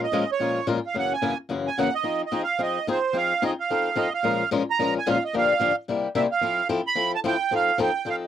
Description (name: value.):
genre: jazz.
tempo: 219 BPM.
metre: 4/4.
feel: swing 57% on 8ths.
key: F minor.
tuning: A4 = 440 Hz.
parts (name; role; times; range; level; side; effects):
accordion; melody; 0.0-8.2 s; C5 to B5; -24 LUFS; right 6 dB; light tremolo tuning.
picked swing-style acoustic guitar; accompaniment; 0.0-8.2 s; Gb2 to Bb4; -25 LUFS; left 4 dB; none.
room: light reverb.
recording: dry, close 1970s-style studio recording.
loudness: -22 LUFS.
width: side -10 dB against mid.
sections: 0.0-4.2 A section; 4.2-8.3 B section.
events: none.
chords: 0.0 Bbm7; 1.0 Gb9; 2.0 Fm7; 3.7 F7; 4.2 Bbm7; 5.3 Gm7; 5.9 C7; 6.4 Fmaj7; 7.5 F7.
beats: 0.13 0.41 0.68 | 0.95 1.23 1.50 1.77 | 2.05 2.32 2.60 2.87 | 3.15 3.42 3.69 3.97 | 4.24 4.51 4.79 5.06 | 5.33 5.61 5.88 6.16 | 6.43 6.70 6.97 7.25 | 7.52 7.79 8.07.